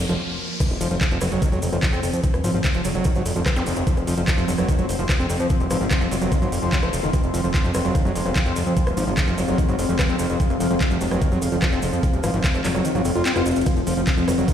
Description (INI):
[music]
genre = psychedelic trance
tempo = 147 BPM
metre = 4/4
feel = straight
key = F phrygian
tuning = A4 = 440 Hz
[part]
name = pulsing gated texture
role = sustained chords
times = 0.0-14.5 s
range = F3 to C4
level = -30 LUFS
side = equal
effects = chorus, built-in reverb, sidechain pumping
[part]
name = fat analog bass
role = bass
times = 0.0-14.4 s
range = Eb1 to F2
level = -25 LUFS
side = equal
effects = none
[part]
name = riser, impact and zap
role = sound effects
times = 0.0-3.7 s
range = none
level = -32 LUFS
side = equal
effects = none
[part]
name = deep dark ambient pad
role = texture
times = 0.0-14.5 s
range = C4 to C6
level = -27 LUFS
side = left 2 dB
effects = chorus, built-in reverb, sidechain pumping
[part]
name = screaming distorted acid line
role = riff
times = 0.1-14.5 s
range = Eb3 to F4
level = -27 LUFS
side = moving between left 3 dB and right 4 dB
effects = distortion, chorus, auto-pan, sidechain pumping, dub echo
[part]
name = garage drum kit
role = drums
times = 0.1-14.5 s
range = crash cymbal, handclaps, hi-hat, ride cymbal, rim click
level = -28 LUFS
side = equal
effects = overdrive
[part]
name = maracas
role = percussion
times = 0.1-14.5 s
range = none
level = -37 LUFS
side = right 1 dB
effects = none
[part]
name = electronic kick drum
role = drums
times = 0.6-14.5 s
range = none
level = -21 LUFS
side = equal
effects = overdrive
[sound]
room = light reverb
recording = played on a big sound system in a bare room, stone room reverb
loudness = -19 LUFS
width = side -9 dB against mid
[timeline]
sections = 0.6-14.5 A section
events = riser 0.0-0.6; break 0.2-0.6; drop 0.6-14.5; impact 0.6-2.2; kick drops out 12.8-13.7; drum fill 13.5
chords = 0.0 F5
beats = 0.20 | 0.60 1.01 1.42 1.83 | 2.24 2.64 3.05 3.46 | 3.87 4.28 4.68 5.09 | 5.50 5.91 6.32 6.73 | 7.13 7.54 7.95 8.36 | 8.77 9.18 9.58 9.99 | 10.40 10.81 11.22 11.62 | 12.03 12.44 12.85 13.26 | 13.66 14.07 14.48